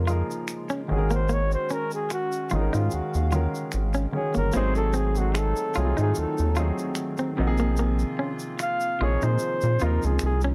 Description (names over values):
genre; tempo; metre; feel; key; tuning
R&B, neo-soul; 74 BPM; 4/4; swing 54% on 16ths; unclear; A4 = 439 Hz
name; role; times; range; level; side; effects
breathy flugelhorn; melody; 0.0-10.4 s; Eb4 to F5; -31 LUFS; equal; plate reverb
warm grand piano; accompaniment; 0.0-10.5 s; C3 to Db5; -33 LUFS; equal; plate reverb
hollow soft pad; sustained chords; 0.0-10.5 s; Db3 to F5; -39 LUFS; equal; chorus, plate reverb
rubbery square bass; bass; 0.0-10.5 s; G1 to Bb2; -26 LUFS; equal; none
semi-hollow electric guitar; second line; 0.1-10.5 s; Bb3 to F4; -34 LUFS; equal; plate reverb
tube shaker and finger snaps; percussion; 0.1-10.5 s; none; -40 LUFS; equal; none
room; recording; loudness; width
light reverb; dark, warm production; -25 LUFS; mono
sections
0.0-10.5 A section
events
flugelhorn solo 0.0-10.5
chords
0.0 Bbm7; 0.9 Ab7sus4; 4.5 Ab7b9; 7.4 Bb7sus2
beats
0.48 | 1.29 2.11 2.92 3.73 | 4.54 5.35 6.16 6.97 | 7.78 8.59 9.40 10.21